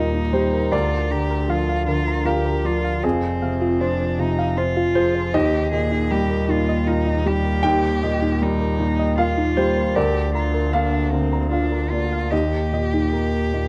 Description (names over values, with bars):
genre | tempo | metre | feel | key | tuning
neoclassical piano and strings | 78 BPM | 3/4 | rubato | Eb major | A4 = 439 Hz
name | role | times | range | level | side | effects
rich cello | second line | 0.0-13.7 s | C4 to Ab4 | -29 LUFS | equal | none
warm upright piano | accompaniment | 0.0-13.7 s | D2 to G5 | -25 LUFS | equal | none
harp-like synth pluck | arpeggios | 0.0-13.7 s | Eb4 to Bb5 | -28 LUFS | equal | chorus, slapback echo
rich double bass | bass | 0.0-13.7 s | F1 to Eb2 | -26 LUFS | equal | none
room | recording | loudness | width
light reverb | none | -21 LUFS | mono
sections
0.0-13.7 A section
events
none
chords
0.0 Ebadd9; 0.7 Bb/D; 3.0 Fm; 5.3 Ebadd9; 10.0 Bb/D; 12.3 Eb